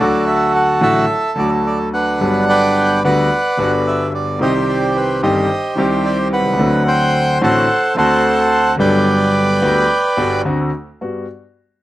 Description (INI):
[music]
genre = tango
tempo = 109 BPM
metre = 4/4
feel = rubato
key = G major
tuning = A4 = 441 Hz
[part]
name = bandoneon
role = melody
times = 0.0-10.4 s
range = D4 to G5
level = -15 LUFS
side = right 1 dB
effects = none
[part]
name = warm concert grand piano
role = accompaniment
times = 0.0-11.2 s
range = G1 to G4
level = -17 LUFS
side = left 1 dB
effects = none
[sound]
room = little or no reverb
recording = recorded outdoors, with no room sound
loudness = -13 LUFS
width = side -15 dB against mid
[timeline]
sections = 0.0-11.0 A section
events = none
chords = 0.0 D; 2.2 Gmaj7; 4.4 Cm; 6.6 D7; 8.8 Gmaj7; 10.5 D7; 11.0 Gmaj7